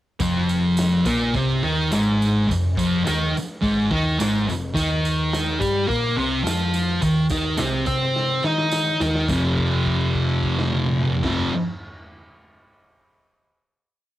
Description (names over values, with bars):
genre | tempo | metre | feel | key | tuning
garage rock duo or trio | 106 BPM | 4/4 | straight | unclear | A4 = 443 Hz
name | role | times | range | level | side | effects
thick fuzz guitar | riff | 0.2-11.5 s | F2 to Eb5 | -20 LUFS | equal | distortion, cassette tape
hollow-body short-scale picked electric bass | bass | 0.2-11.5 s | F1 to Eb3 | -28 LUFS | equal | tube saturation
raw garage drum kit | drums | 0.2-11.4 s | crash cymbal, hi-hat, kick drum, snare drum, toms | -30 LUFS | equal | cassette tape
tambourine | percussion | 0.2-9.6 s | none | -37 LUFS | right 5 dB | none
room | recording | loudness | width
small room reverb | home recording on cassette | -19 LUFS | side -14 dB against mid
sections
0.2-9.3 riff; 9.3-11.6 final chord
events
drum fill 8.2-9.3; held note 9.3-11.2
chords
0.2 F5; 4.8 Eb5; 9.3 F5